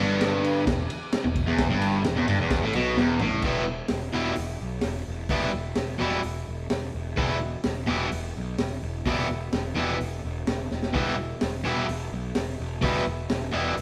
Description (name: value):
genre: garage rock duo or trio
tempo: 128 BPM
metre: 4/4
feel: straight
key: E minor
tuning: A4 = 440 Hz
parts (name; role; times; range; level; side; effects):
- crunchy overdriven guitar; riff; 0.0-13.7 s; E2 to E4; -28 LUFS; equal; none
- fuzz picked electric bass; bass; 0.0-13.8 s; E1 to B1; -34 LUFS; equal; overdrive, tube saturation
- crunchy breakbeat drum kit; drums; 0.2-13.8 s; crash cymbal, hi-hat, kick drum, ride cymbal, snare drum, toms; -33 LUFS; equal; none
room: wet stone room reverb, RT60 1.4 s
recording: band playing live in one room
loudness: -27 LUFS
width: mono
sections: 0.0-3.4 A section; 3.4-13.8 B section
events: drum fill 3.0-3.4, 10.7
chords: 0.0 Em